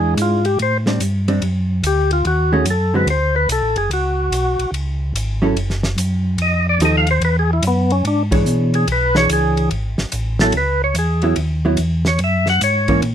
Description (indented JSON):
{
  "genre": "soul jazz organ trio",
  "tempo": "145 BPM",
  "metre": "4/4",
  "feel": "swing 66% on 8ths",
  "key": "E mixolydian",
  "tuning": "A4 = 440 Hz",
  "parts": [
    { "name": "percussive tonewheel organ", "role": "melody", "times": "0.0-13.0 s", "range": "B3 to F#5", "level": "-18 LUFS", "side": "left 1 dB", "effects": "slow rotary speaker" },
    { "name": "vintage hollow-body jazz guitar", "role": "accompaniment", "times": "0.0-13.0 s", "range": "D3 to C#5", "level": "-18 LUFS", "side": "right 1 dB", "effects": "none" },
    { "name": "mellow tonewheel organ", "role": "bass", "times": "0.0-13.1 s", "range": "F#1 to B2", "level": "-18 LUFS", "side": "equal", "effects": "chorus vibrato, slow rotary speaker" },
    { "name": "warm soul drum kit", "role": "drums", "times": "0.2-13.1 s", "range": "hi-hat, kick drum, ride cymbal, snare drum", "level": "-26 LUFS", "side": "equal", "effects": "none" }
  ],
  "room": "little or no reverb",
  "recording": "none",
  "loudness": "-15 LUFS",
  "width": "side -9 dB against mid",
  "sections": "0.0-10.5 A section; 10.5-13.1 A section",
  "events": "tonewheel organ solo 0.0-13.1",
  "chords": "0.0 A#7#11 (rootless); 0.6 Am7; 2.2 D#m7b5; 3.1 D; 3.9 C#7(no3); 5.6 N.C.; 6.4 F9; 7.2 E13; 9.7 F#m11/G#; 10.5 C#m11; 12.2 F#7",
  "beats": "0.17 | 0.58 1.00 1.42 1.83 | 2.24 2.66 3.07 3.49 | 3.90 4.32 4.73 5.15 | 5.56 5.97 6.39 6.80 | 7.22 7.63 8.05 8.46 | 8.88 9.29 9.71 10.12 | 10.54 10.95 11.37 11.78 | 12.20 12.61 13.03"
}